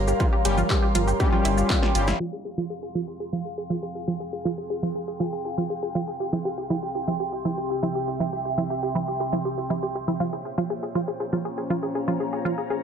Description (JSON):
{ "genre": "melodic techno", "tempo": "120 BPM", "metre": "4/4", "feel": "straight", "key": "F harmonic minor", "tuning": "A4 = 442 Hz", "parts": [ { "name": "dark analog pad", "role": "sustained chords", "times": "0.0-12.8 s", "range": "C3 to G5", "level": "-34 LUFS", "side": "right 2 dB", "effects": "chorus, sidechain pumping" }, { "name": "round analog bass", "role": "bass", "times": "0.0-2.1 s", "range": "G1", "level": "-24 LUFS", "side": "equal", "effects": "sidechain pumping" }, { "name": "ethereal airy pad", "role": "texture", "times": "0.0-12.8 s", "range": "Db4 to C6", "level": "-31 LUFS", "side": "left 1 dB", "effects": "ensemble chorus, built-in reverb, phaser, sidechain pumping" }, { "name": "tight sequenced synth", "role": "arpeggios", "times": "0.1-12.8 s", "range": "E4 to Ab4", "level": "-30 LUFS", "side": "equal", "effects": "chorus, sidechain pumping, tape echo" }, { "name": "punchy analog drum machine", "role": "drums", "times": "0.1-12.6 s", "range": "congas, handclaps, hi-hat, shaker, snare drum", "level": "-29 LUFS", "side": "right 4 dB", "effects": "studio reverb" }, { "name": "electronic kick drum", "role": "drums", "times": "0.2-1.8 s", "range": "none", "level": "-23 LUFS", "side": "equal", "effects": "distortion, studio reverb" }, { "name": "analog synth brass", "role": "stabs", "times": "0.5-2.1 s", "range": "G3 to G4", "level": "-28 LUFS", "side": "left 3 dB", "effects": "chorus, sidechain pumping, tape echo" } ], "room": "light reverb", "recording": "low-pass filter", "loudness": "-24 LUFS", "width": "side -7 dB against mid", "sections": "0.0-2.2 A section; 2.2-12.8 B section", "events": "filter sweep on synth arpeggio sound 0.0-2.2, 2.2-12.8; drum fill 1.7-2.2; filter sweep on analog synth pad 2.2-12.8", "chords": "0.0 Gdim; 2.2 Fmadd9; 6.2 C; 10.2 Bbmadd9", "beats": "| 0.20 0.70 1.20 1.70 | 2.20 2.70 3.20 3.70 | 4.20 4.70 5.20 5.70 | 6.20 6.70 7.20 7.70 | 8.20 8.70 9.20 9.70 | 10.20 10.70 11.20 11.70 | 12.20 12.70" }